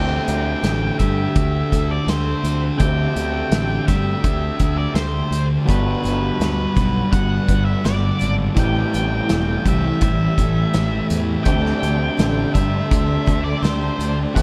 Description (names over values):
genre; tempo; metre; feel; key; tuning
rock, shoegaze and dream pop; 83 BPM; 4/4; straight; D mixolydian; A4 = 438 Hz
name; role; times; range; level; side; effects
octave-fuzz lead guitar; melody; 0.0-14.4 s; B4 to G5; -29 LUFS; equal; distortion, diffuse ambient delay
picked plugged-in twelve-string acoustic guitar; arpeggios; 0.0-14.4 s; E3 to G4; -35 LUFS; equal; ensemble chorus, diffuse ambient delay
electric guitar through a small old amp; riff; 0.0-14.4 s; A2 to G4; -27 LUFS; equal; reverse reverb
thick fuzz guitar; riff; 0.0-14.4 s; G2 to D4; -27 LUFS; equal; distortion, lush chorus
fuzz fingered electric bass; bass; 0.0-14.4 s; E1 to G2; -24 LUFS; equal; overdrive
loose indie drum kit; drums; 0.3-14.4 s; hi-hat, kick drum, snare drum; -24 LUFS; equal; none
string machine, violas; sustained chords; 11.5-14.4 s; D5 to C6; -35 LUFS; equal; ensemble chorus
room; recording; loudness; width
moderate cathedral reverb, RT60 4.4 s; dreamy mix soaked in reverb; -19 LUFS; mono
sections
0.0-14.4 A section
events
none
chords
0.0 D7sus4; 5.7 Gmaj7; 8.6 Am7; 11.5 D7sus4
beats
0.64 1.36 2.08 | 2.80 3.52 4.24 4.96 | 5.68 6.40 7.12 7.84 | 8.56 9.28 10.01 10.73 | 11.45 12.18 12.90 13.63 | 14.35